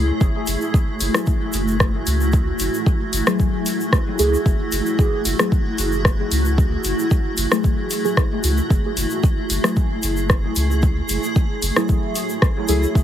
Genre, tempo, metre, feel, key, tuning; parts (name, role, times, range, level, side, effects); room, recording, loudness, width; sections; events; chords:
dub techno; 113 BPM; 4/4; straight; F# minor; A4 = 440 Hz
granular cloud pad; sustained chords; 0.0-13.0 s; A3 to G#4; -24 LUFS; equal; built-in reverb, sidechain pumping
soft dub sub bass; bass; 0.0-13.0 s; F#1 to C#2; -22 LUFS; equal; sidechain pumping
electronic kick drum; drums; 0.2-13.0 s; -18 LUFS; equal
tube shaker; percussion; 0.2-13.0 s; -31 LUFS; left 2 dB
deep house drum kit; drums; 0.5-12.8 s; hi-hat, rim click; -23 LUFS; left 1 dB
deep mellow chord stab; stabs; 1.1-12.9 s; F#3 to G#4; -25 LUFS; equal; chorus, phaser, sidechain pumping, dub echo
digital ambience; heavily compressed radio sound; -17 LUFS; side -10 dB against mid
0.0-13.0 A section
0.0 F#m9